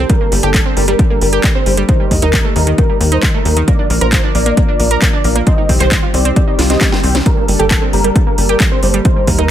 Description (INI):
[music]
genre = uplifting trance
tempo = 134 BPM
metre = 4/4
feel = straight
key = G minor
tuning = A4 = 440 Hz
[part]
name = lush unison pad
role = sustained chords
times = 0.0-9.4 s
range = Eb3 to Bb4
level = -21 LUFS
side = equal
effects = chorus, sidechain pumping
[part]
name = tight sequencer bass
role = bass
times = 0.0-9.5 s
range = G1 to Eb2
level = -15 LUFS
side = equal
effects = sidechain pumping
[part]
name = big supersaw lead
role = melody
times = 0.1-9.5 s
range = A4 to G5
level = -19 LUFS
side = equal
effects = phaser, sidechain pumping, low-pass filter, tape echo
[part]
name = analog pluck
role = arpeggios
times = 0.1-9.4 s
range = Eb3 to C5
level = -19 LUFS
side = right 3 dB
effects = chorus, sidechain pumping, tape echo
[part]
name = electronic kick drum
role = drums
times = 0.1-9.4 s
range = none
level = -14 LUFS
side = equal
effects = overdrive
[part]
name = house drum kit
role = drums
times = 0.1-9.5 s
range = handclaps, hi-hat, snare drum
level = -18 LUFS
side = equal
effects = overdrive, sidechain pumping on hats
[part]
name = swell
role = sound effects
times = 6.5-7.3 s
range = none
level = -25 LUFS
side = left 3 dB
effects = none
[sound]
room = little or no reverb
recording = none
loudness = -10 LUFS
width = side -11 dB against mid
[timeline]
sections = 0.0-9.5 A section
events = filter sweep on analog synth pad 0.0-9.5; swell 6.5-7.3; drum fill 6.6-7.3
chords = 0.1 Gmadd9; 1.9 Eb; 3.7 Bb; 5.5 Cm; 7.3 Gmadd9